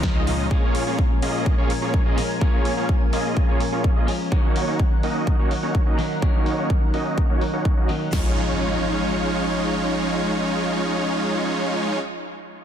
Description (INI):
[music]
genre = EDM, festival progressive house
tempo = 126 BPM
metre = 4/4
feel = straight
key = Db major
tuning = A4 = 440 Hz
[part]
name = electric guitar at the edge of break-up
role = accompaniment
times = 0.0-12.0 s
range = Bb2 to Eb4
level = -28 LUFS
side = left 3 dB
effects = spring reverb, sidechain pumping, dub echo
[part]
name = lush unison pad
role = sustained chords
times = 0.0-12.0 s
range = Db4 to Ab5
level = -32 LUFS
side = right 1 dB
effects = chorus, sidechain pumping
[part]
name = supersaw chords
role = riff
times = 0.0-12.0 s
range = Ab3 to Eb5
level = -24 LUFS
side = right 1 dB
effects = vintage 12-bit sampler grit, sidechain pumping, low-pass filter, dub echo
[part]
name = wide detuned saw bass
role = bass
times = 0.0-0.5 s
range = Db2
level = -26 LUFS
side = equal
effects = chorus, sidechain pumping
[part]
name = big-room dance drum kit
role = drums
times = 0.0-8.2 s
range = crash cymbal, kick drum, snare drum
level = -20 LUFS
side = equal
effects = none
[part]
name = big-room dance drum kit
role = drums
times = 0.0-8.0 s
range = hi-hat, snare drum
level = -35 LUFS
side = left 1 dB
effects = low-pass filter on cymbals, low-pass filter on hats, low-pass filter on snare, low-pass filter on room
[part]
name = impact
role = sound effects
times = 8.1-12.0 s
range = none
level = -31 LUFS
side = equal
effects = none
[sound]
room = light reverb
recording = dense, heavily limited modern master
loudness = -19 LUFS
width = side -9 dB against mid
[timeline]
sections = 0.0-8.1 A section; 8.1-11.9 B section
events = filter sweep on supersaw synth 0.0-8.1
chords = 0.0 Dbadd9; 0.5 Bbm7; 4.3 Gb6; 8.1 Dbadd9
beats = 0.03 | 0.51 0.99 1.46 1.94 | 2.41 2.89 3.37 3.84 | 4.32 4.79 5.27 5.75 | 6.22 6.70 7.18 7.65 | 8.13 8.61 9.08 9.56 | 10.03 10.51 10.99 11.46